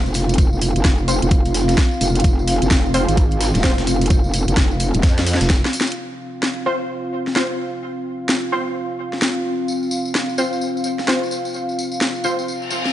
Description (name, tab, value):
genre	bass house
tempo	129 BPM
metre	4/4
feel	swing 62% on 16ths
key	unclear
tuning	A4 = 440 Hz
part	dark analog pad	sustained chords	0.0-12.9 s	C4 to F5	-24 LUFS	equal	chorus, sidechain pumping
part	metallic wobble bass	bass	0.0-5.6 s	Eb1 to F2	-19 LUFS	equal	chorus, tube saturation, sidechain pumping
part	breakbeat sampler-style drum kit	drums	0.1-5.9 s	hi-hat, snare drum	-32 LUFS	equal	none
part	garage drum kit	drums	0.1-12.9 s	hi-hat, snare drum	-22 LUFS	equal	overdrive
part	tambourine	percussion	0.1-5.9, 9.7-12.9 s	none	-30 LUFS	left 2 dB	none
part	electronic kick drum	drums	0.4-5.6 s	none	-16 LUFS	equal	overdrive
part	orchestra-hit-like synth stab	stabs	1.1-3.7, 6.7-12.3 s	C4 to C5	-25 LUFS	equal	built-in reverb, cassette tape, sidechain pumping, digital delay
part	reverse cymbal	sound effects	12.6-12.9 s	none	-23 LUFS	left 3 dB	none
room	light reverb, digital ambience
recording	nothing above 10.8 kHz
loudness	-16 LUFS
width	side -12 dB against mid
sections	0.0-6.0 A section; 6.0-12.9 B section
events	filter sweep on synth stab 0.0-6.0; drum fill 5.0-6.0; reverse cymbal 12.6-12.9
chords	0.0 F5